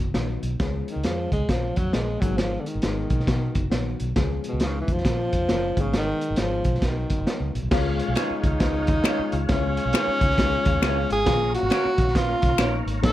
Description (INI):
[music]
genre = uptempo 1960s-style soul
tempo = 135 BPM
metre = 4/4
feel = swing 63% on 8ths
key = Db mixolydian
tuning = A4 = 440 Hz
[part]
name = dark upright piano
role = accompaniment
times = 0.0-13.1 s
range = Eb3 to F5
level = -31 LUFS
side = left 7 dB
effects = none
[part]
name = vintage muted fingered electric bass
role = bass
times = 0.0-13.1 s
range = Gb1 to Cb3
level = -28 LUFS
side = equal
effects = none
[part]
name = crunchy breakbeat drum kit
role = drums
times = 0.1-13.1 s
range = crash cymbal, hi-hat, kick drum, snare drum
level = -25 LUFS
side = equal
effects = none
[part]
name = breathy tenor saxophone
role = melody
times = 0.9-13.1 s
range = Cb3 to Bb4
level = -26 LUFS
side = equal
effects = none
[part]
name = tonewheel organ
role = sustained chords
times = 7.7-13.1 s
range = Db4 to F5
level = -34 LUFS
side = right 1 dB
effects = slow rotary speaker, chorus vibrato
[part]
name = electric guitar through a small old amp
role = stabs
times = 8.2-12.7 s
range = Db4 to Db5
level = -30 LUFS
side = right 5 dB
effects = none
[part]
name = finger snaps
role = percussion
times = 8.2-12.7 s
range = none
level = -30 LUFS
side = left 8 dB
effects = none
[sound]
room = light reverb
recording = dark, warm production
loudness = -21 LUFS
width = side -14 dB against mid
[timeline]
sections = 0.0-7.7 A section; 7.7-13.1 B section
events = none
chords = 0.0 Cb; 0.6 Db; 1.5 Bbm; 2.2 Abm; 3.3 Cb; 4.2 Db; 5.1 Bbm; 5.7 Abm; 6.8 Cb; 7.7 Db; 11.3 Bbm